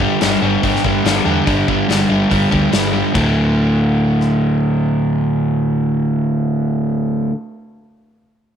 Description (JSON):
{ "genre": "classic rock", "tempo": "142 BPM", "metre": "4/4", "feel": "straight", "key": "unclear", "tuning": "A4 = 442 Hz", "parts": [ { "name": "overdriven semi-hollow guitar", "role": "riff", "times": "0.0-7.3 s", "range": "D2 to G3", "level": "-15 LUFS", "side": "equal", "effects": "none" }, { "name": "hollow-body short-scale picked electric bass", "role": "bass", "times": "0.0-7.3 s", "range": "D1 to E2", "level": "-24 LUFS", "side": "right 1 dB", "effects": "none" }, { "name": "huge arena drum kit", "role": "drums", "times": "0.0-4.3 s", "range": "crash cymbal, hi-hat, kick drum, rim click, snare drum", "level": "-21 LUFS", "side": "left 3 dB", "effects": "none" } ], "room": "moderate spring reverb, RT60 2.0 s, studio ambience", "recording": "1960s-style stereo", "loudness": "-14 LUFS", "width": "side -8 dB against mid", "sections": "0.0-3.1 A section; 3.1-6.5 B section", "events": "none", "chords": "0.0 G5; 3.1 D5" }